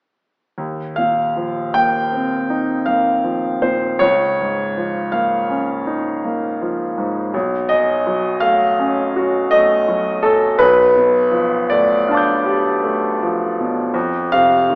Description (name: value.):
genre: classical, impressionist solo piano.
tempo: 54 BPM (dotted quarters).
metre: 9/8.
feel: uneven beats, rubato.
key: unclear.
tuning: A4 = 440 Hz.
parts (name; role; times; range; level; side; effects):
clear grand piano; solo; 0.6-14.8 s; B1 to G6; -14 LUFS; equal; none.
room: moderate scoring stage reverb, RT60 1.5 s.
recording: AM radio sound.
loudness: -14 LUFS.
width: side -30 dB against mid.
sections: 0.6-14.8 A section.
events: none.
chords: 0.6 Eb69; 4.0 Db69; 7.3 B9; 10.6 G9/B; 13.9 F5.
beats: | 0.59 1.75 2.88 | 4.03 5.15 6.26 | 7.34 8.43 9.53 | 10.60 11.70 12.85 | 13.95.